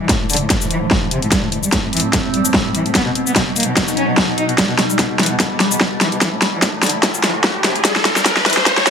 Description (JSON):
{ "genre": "heavy wobble dubstep", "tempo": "147 BPM", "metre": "4/4", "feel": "swing 55% on 16ths, half-time", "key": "unclear", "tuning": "A4 = 440 Hz", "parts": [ { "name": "dark cello", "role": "melody", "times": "0.0-8.9 s", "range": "A2 to D#4", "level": "-22 LUFS", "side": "equal", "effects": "dub echo" }, { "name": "evolving wavetable pad", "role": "sustained chords", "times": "0.0-8.9 s", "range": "E2 to D#4", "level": "-22 LUFS", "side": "equal", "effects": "chorus, built-in reverb, phaser, sidechain pumping" }, { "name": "dubstep drum kit", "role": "drums", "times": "0.1-8.9 s", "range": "hi-hat, shaker, snare drum", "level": "-16 LUFS", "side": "equal", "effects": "none" }, { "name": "electronic kick drum", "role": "drums", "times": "0.1-8.8 s", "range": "none", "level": "-22 LUFS", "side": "equal", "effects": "distortion" }, { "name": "riser", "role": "sound effects", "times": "6.2-8.9 s", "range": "none", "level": "-21 LUFS", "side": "left 1 dB", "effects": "none" } ], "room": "light reverb", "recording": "high-pass filter", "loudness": "-14 LUFS", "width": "side -7 dB against mid", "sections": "0.0-8.9 A section", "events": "build-up 0.0-8.9; drum fill 0.0-8.9; riser 6.2-8.9", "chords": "0.0 Dmadd9; 1.3 Am7; 3.0 B; 4.6 Em; 6.2 Dmadd9; 7.8 Am7" }